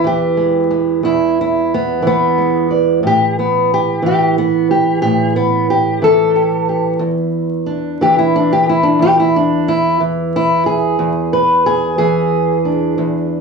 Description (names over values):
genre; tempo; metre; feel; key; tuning
acoustic country blues, solo or duo; 60 BPM (dotted quarters); 12/8; straight; E mixolydian; A4 = 442 Hz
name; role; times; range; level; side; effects
fingerpicked old ladder-braced acoustic guitar; solo; 0.0-13.4 s; E2 to D5; -12 LUFS; right 1 dB; none
room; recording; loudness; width
moderate studio ambience, RT60 0.4 s; worn, warbling old tape, cassette tape, vinyl crackle, warbly pitch drift, studio reverb; -12 LUFS; side -4 dB against mid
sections
0.0-13.4 A section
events
steel-string acoustic guitar solo 0.0-13.4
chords
0.0 E; 3.0 A5; 7.0 E7